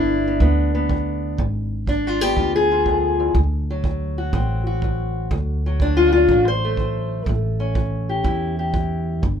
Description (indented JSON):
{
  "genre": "acoustic country blues, solo or duo",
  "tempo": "122 BPM",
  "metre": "4/4",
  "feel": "swing 67% on 8ths",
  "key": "D mixolydian",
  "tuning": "A4 = 440 Hz",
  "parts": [
    { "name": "fingerpicked steel-string acoustic guitar", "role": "melody", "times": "0.0-9.4 s", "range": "D2 to C5", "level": "-20 LUFS", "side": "left 2 dB", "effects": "none" },
    { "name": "upright bass", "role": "bass", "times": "0.0-9.4 s", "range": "G1 to E2", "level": "-22 LUFS", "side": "equal", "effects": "none" },
    { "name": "kick drum", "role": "drums", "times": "0.4-9.4 s", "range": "none", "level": "-24 LUFS", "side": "right 2 dB", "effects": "none" }
  ],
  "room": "little or no reverb",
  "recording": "minimal, uncompressed stereo recording",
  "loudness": "-18 LUFS",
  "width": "side -8 dB against mid",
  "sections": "0.0-9.4 A section",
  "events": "none",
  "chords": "0.0 G; 1.4 G#dim7; 3.4 D7; 7.3 A7",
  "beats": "0.41 0.90 | 1.39 1.88 2.37 2.86 | 3.35 3.85 4.34 4.83 | 5.32 5.81 6.30 6.79 | 7.28 7.77 8.26 8.75 | 9.24"
}